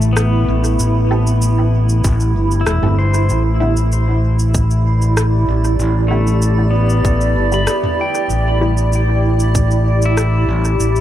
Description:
ambient dub; 96 BPM; 4/4; straight; A4 = 439 Hz
granular cloud pad; sustained chords; 0.0-11.0 s; A3 to D5; -20 LUFS; right 2 dB; built-in reverb
pedal steel guitar; arpeggios; 0.0-11.0 s; A3 to B5; -24 LUFS; left 3 dB; dub echo
overdriven fingered electric bass; bass; 0.0-11.0 s; E1 to A1; -14 LUFS; equal
organic electronic drum kit; drums; 0.0-11.0 s; rim click, shaker, toms; -24 LUFS; equal; dub echo
filtered dub chord stab; stabs; 1.1-8.7 s; D3 to A4; -26 LUFS; right 1 dB; phaser, dub echo
electronic kick drum; drums; 2.0-9.7 s; -16 LUFS; equal
light reverb, digital ambience; -13 LUFS; side -12 dB against mid
0.0-11.0 A section
0.0 Am7; 3.3 Em7
0.17 | 0.79 1.42 2.04 2.67 | 3.29 3.92 4.54 5.17 | 5.79 6.42 7.04 7.67 | 8.29 8.92 9.54 10.17 | 10.79

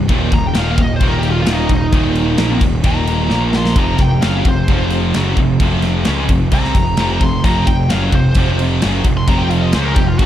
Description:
heavy metal; 131 BPM; 4/4; straight; A4 = 440 Hz
distorted electric guitar; riff; 0.0-10.3 s; Eb2 to Db4; -24 LUFS; left 1 dB; overdrive, analog delay
high-gain distorted guitar; riff; 0.0-10.3 s; Eb2 to Db4; -20 LUFS; right 8 dB; distortion, analog delay
tight distorted guitar; riff; 0.0-10.3 s; Eb2 to Db4; -22 LUFS; left 8 dB; distortion, analog delay
fuzz picked electric bass; bass; 0.0-10.3 s; Eb1 to Db2; -18 LUFS; equal; overdrive
tight metal drum kit; drums; 0.1-10.3 s; crash cymbal, kick drum, snare drum; -17 LUFS; equal
high-gain lead guitar; melody; 0.3-10.3 s; Eb4 to C6; -22 LUFS; equal; distortion, analog delay
light reverb, studio ambience; echo-heavy mix, cassette tape; -12 LUFS; side -11 dB against mid
0.0-10.3 A section
lead electric guitar solo 0.0-10.3; drum fill 3.3-3.8
0.1 Eb5; 3.3 Bb5; 3.8 F5
| 0.10 0.56 1.02 1.48 | 1.94 2.40 2.85 3.31 | 3.77 4.24 4.69 5.15 | 5.61 6.07 6.53 6.99 | 7.45 7.91 8.37 8.83 | 9.29 9.74 10.20

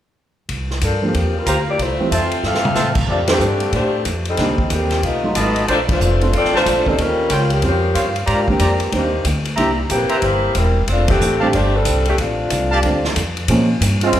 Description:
jazz, big band swing; 185 BPM; 4/4; swing 63% on 8ths; F major; A4 = 440 Hz
upright bass; bass; 0.5-14.2 s; E1 to Bb2; -20 LUFS; equal
swinging big-band drum kit; drums; 0.5-14.2 s; crash cymbal, hi-hat, kick drum, ride cymbal, snare drum, toms; -23 LUFS; equal
dark saxophone section; melody; 0.8-13.1 s; D3 to F5; -19 LUFS; left 1 dB
dark baby grand piano; accompaniment; 1.0-13.7 s; D3 to E#4; -23 LUFS; right 2 dB
warm trumpet section; stabs; 1.5-12.8 s; D4 to Bb5; -23 LUFS; equal
mellow trombone section; second line; 14.0-14.2 s; Ab3 to F4; -14 LUFS; right 3 dB
wet recital hall reverb, RT60 1.4 s; recorded in a church or concert hall; -15 LUFS; side -11 dB against mid
0.5-3.1 A section; 3.1-13.5 B section
drum fill 2.4-2.8; band accent 3.2, 5.8, 11.0
0.5 C7sus4; 1.8 Fmaj7/C; 3.1 F69; 4.4 Cm7; 5.0 B7#11; 5.7 Bbmaj9; 7.0 Eb13; 8.3 Abmaj9#11; 9.6 C7; 10.9 F69; 13.5 Bbm9
| 0.49 0.81 1.14 1.46 | 1.78 2.11 2.43 2.76 | 3.08 3.41 3.73 4.05 | 4.38 4.70 5.03 5.35 | 5.68 6.00 6.33 6.65 | 6.98 7.30 7.62 7.95 | 8.28 8.60 8.93 9.25 | 9.58 9.90 10.23 10.55 | 10.88 11.20 11.53 11.86 | 12.18 12.51 12.83 13.16 | 13.48 13.81 14.13

